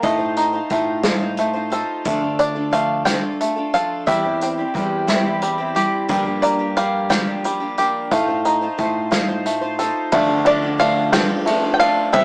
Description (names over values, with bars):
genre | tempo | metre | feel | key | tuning
indie folk with a building arrangement | 59 BPM (dotted quarters) | 6/8 | straight | unclear | A4 = 440 Hz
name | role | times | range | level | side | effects
bluegrass banjo | melody | 0.0-12.2 s | D5 to G5 | -22 LUFS | equal | none
picked twelve-string acoustic guitar | accompaniment | 0.0-12.2 s | G2 to C5 | -27 LUFS | equal | none
bluegrass banjo | arpeggios | 0.0-12.2 s | G3 to A4 | -24 LUFS | equal | none
picked electric bass | bass | 0.0-12.2 s | D2 to A2 | -30 LUFS | equal | none
unplugged drum kit | drums | 0.0-12.2 s | hi-hat, kick drum, ride cymbal, snare drum | -26 LUFS | equal | none
warm upright piano | accompaniment | 10.1-12.2 s | D2 to E5 | -27 LUFS | equal | none
room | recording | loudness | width
moderate studio reverb, RT60 0.6 s | rough rehearsal-room recording, warm saturation, small speaker sound | -19 LUFS | mono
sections
0.0-10.1 A section; 10.1-12.2 A section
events
none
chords
0.0 F7/A; 2.0 Dm; 4.1 C/E; 6.1 Gm7; 8.1 F7/A; 10.1 Dm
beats
| 0.03 1.04 | 2.05 3.06 | 4.07 5.08 | 6.09 7.10 | 8.11 9.12 | 10.13 11.14 | 12.14